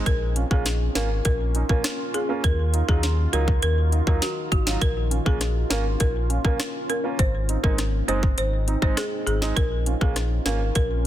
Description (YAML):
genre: dancehall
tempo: 101 BPM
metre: 4/4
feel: straight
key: Bb minor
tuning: A4 = 441 Hz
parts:
  - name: warm grand piano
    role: accompaniment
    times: 0.0-11.1 s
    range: Gb3 to F4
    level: -31 LUFS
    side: right 6 dB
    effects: none
  - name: deep dark ambient pad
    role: sustained chords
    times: 0.0-11.1 s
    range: Eb3 to Bb4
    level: -32 LUFS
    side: equal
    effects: chorus, built-in reverb, sidechain pumping
  - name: sub bass with octave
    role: bass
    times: 0.0-11.1 s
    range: Gb1 to Eb2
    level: -24 LUFS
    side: equal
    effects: none
  - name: folk marimba with hard mallets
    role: melody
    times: 0.1-10.9 s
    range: Gb4 to C5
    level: -29 LUFS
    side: equal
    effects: ping-pong delay
  - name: island pop drum kit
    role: drums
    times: 0.1-10.9 s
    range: hi-hat, kick drum, rim click, snare drum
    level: -24 LUFS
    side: equal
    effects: overdrive
room: little or no reverb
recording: dense, heavily limited modern master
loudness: -20 LUFS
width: side -12 dB against mid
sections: 0.0-11.1 A section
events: none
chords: 0.1 Bbm; 2.4 Ebmadd9; 4.8 Bbm; 7.2 Ab; 9.6 Bbm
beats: | 0.06 0.66 1.25 1.84 | 2.44 3.03 3.63 4.22 | 4.82 5.41 6.00 6.60 | 7.19 7.79 8.38 8.97 | 9.57 10.16 10.76